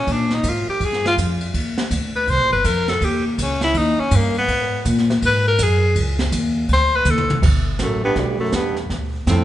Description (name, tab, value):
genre	jazz, small-group swing and bop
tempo	163 BPM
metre	4/4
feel	swing 63% on 8ths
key	unclear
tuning	A4 = 440 Hz
part	bright tenor saxophone	melody	0.0-9.4 s	G3 to C5	-20 LUFS	left 1 dB	none
part	upright bass	bass	0.0-9.4 s	G1 to A#2	-20 LUFS	equal	none
part	jazz brush drum kit	drums	0.1-9.4 s	brushed snare drum, crash cymbal, hi-hat, kick drum, ride cymbal, snare drum, toms	-24 LUFS	equal	none
part	warm baritone saxophone	second line	7.8-9.4 s	D2 to A2	-22 LUFS	right 3 dB	none
room	moderate recital hall reverb, RT60 1.6 s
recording	recorded in a church or concert hall, nothing above 10.3 kHz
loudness	-16 LUFS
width	side -13 dB against mid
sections	0.0-7.4 A section; 7.4-9.4 B section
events	tenor saxophone solo 0.0-7.4; drum fill 7.1-7.4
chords	0.1 A#5; 1.5 D#69; 3.0 D#7; 4.5 G#m9; 6.0 C#sus2; 6.7 Cm69; 7.4 Gadd9; 8.9 Dm